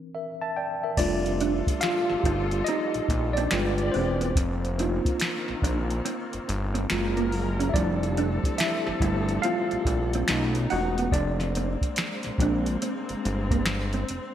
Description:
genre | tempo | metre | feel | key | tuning
R&B, neo-soul | 71 BPM | 4/4 | swing 63% on 16ths | unclear | A4 = 441 Hz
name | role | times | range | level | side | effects
tine electric piano | accompaniment | 0.0-14.3 s | E3 to A5 | -28 LUFS | equal | overdrive, fast stereo tremolo
warm studio string section | sustained chords | 1.0-14.3 s | Eb3 to D5 | -34 LUFS | left 2 dB | none
fat analog bass | bass | 1.0-14.2 s | E1 to B1 | -28 LUFS | equal | none
soft vintage rhythm box | drums | 1.0-14.3 s | crash cymbal, finger snaps, hi-hat, kick drum, snare drum | -28 LUFS | equal | none
mellow electric guitar | second line | 1.4-14.1 s | Bb3 to E4 | -33 LUFS | right 6 dB | ensemble chorus
room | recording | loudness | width
moderate lush hall reverb, RT60 2.0 s | bright 1980s-style digital production | -24 LUFS | side -10 dB against mid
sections
1.0-14.3 A section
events
break 0.0-1.0; tine electric piano solo 1.0-14.3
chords
0.0 C9; 1.0 Ebmaj9#11/F; 3.5 G7b9; 4.4 Cm11/F; 6.9 Gbmaj9; 7.7 Fmaj9; 10.3 B9; 11.1 Bb9/F

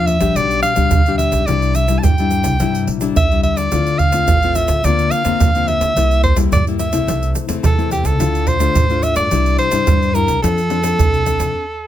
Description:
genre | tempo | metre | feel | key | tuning
samba and choro | 107 BPM | 4/4 | straight | unclear | A4 = 437 Hz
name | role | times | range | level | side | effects
breathy soprano saxophone | melody | 0.0-11.9 s | G4 to A5 | -18 LUFS | right 1 dB | none
nylon-string guitar | accompaniment | 0.0-11.6 s | G2 to A4 | -20 LUFS | left 7 dB | none
upright bass | bass | 0.0-11.5 s | A1 to G2 | -20 LUFS | right 1 dB | none
pandeiro, egg shaker and surdo | percussion | 0.1-11.5 s | none | -18 LUFS | right 2 dB | none
room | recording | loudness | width
light reverb | close, detailed microphones | -13 LUFS | side -11 dB against mid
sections
0.0-11.9 A section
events
stop 11.6-11.9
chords
0.4 G/B; 1.5 Cadd9; 3.7 Dm7; 4.8 Bbadd9/D; 6.0 C7; 7.1 Am/C; 8.2 Dm; 9.3 Cadd9; 10.4 F6

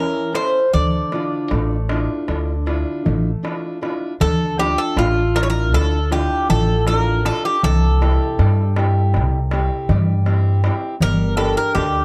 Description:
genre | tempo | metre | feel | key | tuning
greek folk, Greek bouzouki band | 158 BPM (eighths) | 9/8 | straight | D minor | A4 = 440 Hz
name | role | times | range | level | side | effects
Greek bouzouki | melody | 0.0-12.0 s | F4 to D5 | -23 LUFS | equal | none
fingerpicked steel-string acoustic guitar | accompaniment | 0.0-12.0 s | C3 to E5 | -27 LUFS | equal | none
darbuka | percussion | 0.3-11.9 s | none | -27 LUFS | equal | none
upright bass | bass | 0.7-12.0 s | G1 to G2 | -21 LUFS | equal | none
room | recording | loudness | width
little or no reverb | dry, close 1970s-style studio recording | -18 LUFS | mono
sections
0.0-4.2 A section; 4.2-12.0 B section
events
speeding up 0.0-12.0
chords
0.0 A; 0.7 Dmadd9; 7.6 C; 11.0 Gm

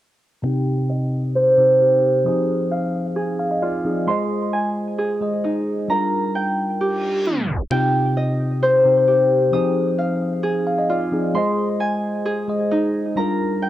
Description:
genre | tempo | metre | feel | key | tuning
hip hop | 132 BPM | 4/4 | half-time | C minor | A4 = 440 Hz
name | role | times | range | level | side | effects
mellow tine electric piano | accompaniment | 0.4-13.7 s | C3 to F5 | -22 LUFS | equal | phaser, low-pass filter
Celtic harp | arpeggios | 0.4-13.7 s | Eb4 to Eb6 | -20 LUFS | equal | low-pass filter, analog delay
reverse cymbal | sound effects | 6.9-7.7 s | none | -32 LUFS | left 1 dB | none
room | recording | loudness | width
light reverb, small room ambience | home recording on cassette, tape stop | -17 LUFS | side -13 dB against mid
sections
0.4-7.7 A section; 7.7-13.7 B section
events
filter sweep 0.4-7.7; tine electric piano fill 3.2-4.1; reverse cymbal 6.9-7.7; tape stop 7.3-7.7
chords
0.4 Cm; 2.3 Fm7; 4.1 Ab; 5.9 Gm7; 7.7 Cm; 9.5 Fm7; 11.4 Ab; 13.2 Gm7

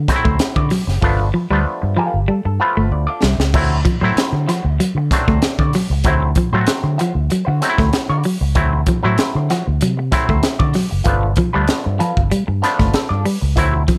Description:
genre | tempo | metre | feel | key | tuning
funk | 96 BPM | 4/4 | straight | D mixolydian | A4 = 440 Hz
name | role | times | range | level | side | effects
fingered electric bass with an envelope filter | bass | 0.0-13.8 s | F#1 to D3 | -20 LUFS | equal | none
clean electric guitar | accompaniment | 0.1-13.9 s | E4 to D5 | -28 LUFS | equal | wah, vibrato effect, plate reverb
auto-wah clav | stabs | 0.1-13.8 s | F3 to F5 | -24 LUFS | equal | plate reverb
crisp fusion drum kit | drums | 0.1-14.0 s | crash cymbal, hi-hat, kick drum, snare drum | -21 LUFS | equal | none
semi-hollow electric guitar | riff | 0.2-14.0 s | F3 to A3 | -22 LUFS | equal | none
room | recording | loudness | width
light reverb | none | -17 LUFS | mono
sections
0.0-3.5 A section; 3.5-14.0 B section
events
drum fill 1.0-3.5; clav fill 1.7-3.5, 12.6-13.6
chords
0.0 D9; 1.0 G9; 3.5 D9; 11.1 G9

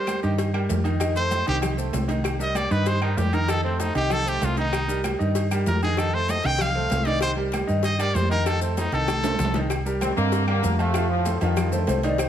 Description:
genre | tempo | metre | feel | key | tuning
latin, salsa | 193 BPM | 4/4 | straight | unclear | A4 = 441 Hz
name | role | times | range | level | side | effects
brilliant trumpet | melody | 0.0-9.6 s | C4 to G5 | -26 LUFS | equal | none
bright upright piano | accompaniment | 0.0-12.3 s | C3 to F5 | -28 LUFS | right 1 dB | none
claves | percussion | 0.1-12.3 s | none | -40 LUFS | left 4 dB | none
congas | percussion | 0.1-12.3 s | none | -34 LUFS | left 2 dB | none
cowbell and bongos | percussion | 0.1-12.3 s | none | -34 LUFS | left 5 dB | none
maracas | percussion | 0.1-12.3 s | none | -42 LUFS | left 7 dB | none
timbales and agogo bells | percussion | 0.1-12.3 s | none | -32 LUFS | right 3 dB | none
hollow-body short-scale fingered electric bass | bass | 0.2-12.3 s | C2 to G2 | -25 LUFS | equal | none
brilliant trombone section | melody | 10.0-12.0 s | G2 to C4 | -27 LUFS | left 1 dB | none
breathy mellow bansuri | second line | 11.7-12.3 s | C5 to D5 | -29 LUFS | left 5 dB | none
room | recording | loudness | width
moderate large studio reverb, RT60 1.3 s | none | -21 LUFS | side -10 dB against mid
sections
0.0-9.7 A section; 9.7-12.3 B section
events
trumpet solo 0.0-9.7; drum fill 9.1-9.7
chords
0.0 Cm7; 1.0 F7; 2.2 Cm7; 3.5 F7; 4.7 Cm7; 6.0 F7; 7.2 Cm7; 8.5 F7; 9.7 Cm7; 10.9 F7

